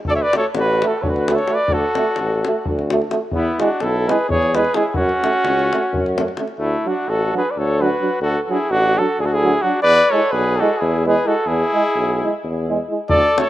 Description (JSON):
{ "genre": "balkan folk, Balkan brass band", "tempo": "258 BPM (eighths)", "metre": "7/8", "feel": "straight", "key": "unclear", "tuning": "A4 = 440 Hz", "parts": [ { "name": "davul", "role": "percussion", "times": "0.0-6.5, 13.1-13.5 s", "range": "none", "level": "-26 LUFS", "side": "left 3 dB", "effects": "none" }, { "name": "mellow cornet", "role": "melody", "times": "0.1-13.5 s", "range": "E4 to E5", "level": "-19 LUFS", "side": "right 1 dB", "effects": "none" }, { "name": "warm trumpet", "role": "second line", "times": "0.1-13.5 s", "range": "A3 to C#5", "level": "-24 LUFS", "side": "left 4 dB", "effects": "none" }, { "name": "warm tuba", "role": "bass", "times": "0.1-13.2 s", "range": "A1 to F#2", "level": "-21 LUFS", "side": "left 1 dB", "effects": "none" }, { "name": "clear euphonium", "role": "accompaniment", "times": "0.3-13.5 s", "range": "F#3 to A3", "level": "-24 LUFS", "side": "right 4 dB", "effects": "none" }, { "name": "mellow French horn", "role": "accompaniment", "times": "0.4-13.5 s", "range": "C#4 to F#4", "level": "-28 LUFS", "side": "left 4 dB", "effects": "none" } ], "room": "moderate plate reverb, RT60 3.1 s", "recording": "rough home demo mix", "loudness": "-16 LUFS", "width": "side -14 dB against mid", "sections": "0.0-6.6 A section; 6.6-13.5 A section", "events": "none", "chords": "0.1 D; 3.3 E; 4.9 F#m; 6.6 D; 9.8 E" }